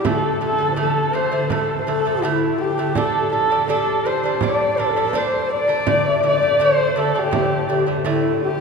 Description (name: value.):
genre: mongolian traditional, Mongolian folk.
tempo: 82 BPM.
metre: 4/4.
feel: straight.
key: unclear.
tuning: A4 = 438 Hz.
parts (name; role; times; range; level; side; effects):
dark horsehead fiddle; melody; 0.0-8.6 s; E4 to D5; -19 LUFS; equal; none.
breathy bright low xiao; second line; 0.0-8.6 s; E4 to E5; -25 LUFS; left 3 dB; none.
lute; arpeggios; 0.0-8.5 s; D3 to D4; -23 LUFS; right 2 dB; none.
frame drum; percussion; 0.0-8.2 s; none; -28 LUFS; right 4 dB; none.
room: wet cathedral reverb, RT60 7.0 s.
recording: recorded in a church or concert hall.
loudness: -17 LUFS.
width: side -5 dB against mid.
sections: 0.0-8.6 A section.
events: none.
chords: 0.1 D5; 3.0 G5; 5.9 D5.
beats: | 0.05 0.78 1.50 2.23 | 2.96 3.69 4.42 5.14 | 5.87 6.60 7.33 8.06.